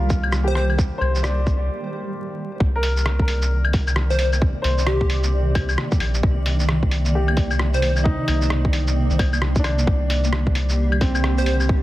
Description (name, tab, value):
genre	future garage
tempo	132 BPM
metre	4/4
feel	swing 61% on 16ths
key	C minor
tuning	A4 = 441 Hz
part	clear upright piano	accompaniment	0.0-11.8 s	C4 to D5	-29 LUFS	equal	sidechain pumping, low-pass filter, analog delay
part	granular cloud pad	sustained chords	0.0-11.8 s	C3 to D5	-27 LUFS	equal	built-in reverb, sidechain pumping
part	soft dub sub bass	bass	0.0-11.8 s	Bb1 to C2	-20 LUFS	equal	sidechain pumping
part	electronic kick drum	drums	0.1-11.8 s	none	-21 LUFS	equal	overdrive, vintage 12-bit sampler grit
part	lo-fi sampler-style drum kit	drums	0.1-11.7 s	claves, hi-hat, rim click, shaker	-26 LUFS	left 1 dB	vintage 12-bit sampler grit, soft clipping on snare
part	plucky unison lead	melody	0.5-0.7, 4.1-7.9, 11.4-11.6 s	G4 to C5	-29 LUFS	equal	phaser, analog delay
room	light reverb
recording	dense, heavily limited modern master, vinyl crackle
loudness	-18 LUFS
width	side -16 dB against mid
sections	0.0-2.6 A section; 2.6-11.8 A section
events	break 1.7-2.6; filter sweep on upright piano 2.6-11.8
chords	0.0 Cm9; 9.9 Gm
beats	0.33 | 0.78 1.24 1.69 2.15 | 2.60 3.06 3.51 3.96 | 4.42 4.87 5.33 5.78 | 6.24 6.69 7.15 7.60 | 8.05 8.51 8.96 9.42 | 9.87 10.33 10.78 11.24 | 11.69